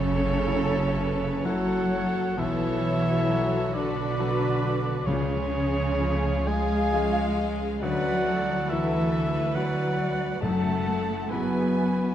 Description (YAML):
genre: cinematic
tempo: 61-71 BPM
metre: 3/4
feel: rubato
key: F# minor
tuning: A4 = 441 Hz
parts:
  - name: warm symphonic violin section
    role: melody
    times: 0.0-12.1 s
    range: E4 to A4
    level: -43 LUFS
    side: left 3 dB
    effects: none
  - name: mellow clarinet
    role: second line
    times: 0.0-12.1 s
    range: C#4 to B4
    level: -34 LUFS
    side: equal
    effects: none
  - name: mellow cor anglais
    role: second line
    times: 0.0-12.1 s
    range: B4 to A5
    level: -31 LUFS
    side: right 2 dB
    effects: none
  - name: mellow hollow flute section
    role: second line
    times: 0.0-12.1 s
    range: G#4 to G#5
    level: -36 LUFS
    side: left 2 dB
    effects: none
  - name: rich symphonic violin section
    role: second line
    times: 0.0-12.1 s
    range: G#4 to G#5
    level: -40 LUFS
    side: left 2 dB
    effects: none
  - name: clear concert grand piano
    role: accompaniment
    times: 0.0-12.1 s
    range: F#1 to A4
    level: -33 LUFS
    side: left 1 dB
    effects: none
  - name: warm French horn section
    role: sustained chords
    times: 0.0-12.1 s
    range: C#3 to B3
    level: -33 LUFS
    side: left 3 dB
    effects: none
  - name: concert harp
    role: arpeggios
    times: 0.0-12.1 s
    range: F#2 to G#5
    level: -36 LUFS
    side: left 7 dB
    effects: none
  - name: dark symphonic cello section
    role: bass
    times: 0.0-12.1 s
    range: C#3 to B3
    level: -30 LUFS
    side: right 2 dB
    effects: none
  - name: warm symphonic double bass section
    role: bass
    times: 0.0-12.1 s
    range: F#1 to F#2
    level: -31 LUFS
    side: right 2 dB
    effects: none
  - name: rich symphonic viola section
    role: accompaniment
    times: 0.5-12.1 s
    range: A3 to B4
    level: -37 LUFS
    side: equal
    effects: none
  - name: timpani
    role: percussion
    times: 5.1-11.7 s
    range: F#2 to C#3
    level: -34 LUFS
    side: left 2 dB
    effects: none
room: wet scoring stage reverb, RT60 1.8 s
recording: dark, warm production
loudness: -23 LUFS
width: side -10 dB against mid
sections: 0.0-12.1 A section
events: none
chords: 0.0 F#m7; 2.4 Bm7; 5.1 C#; 7.8 Dadd9; 10.4 F#m7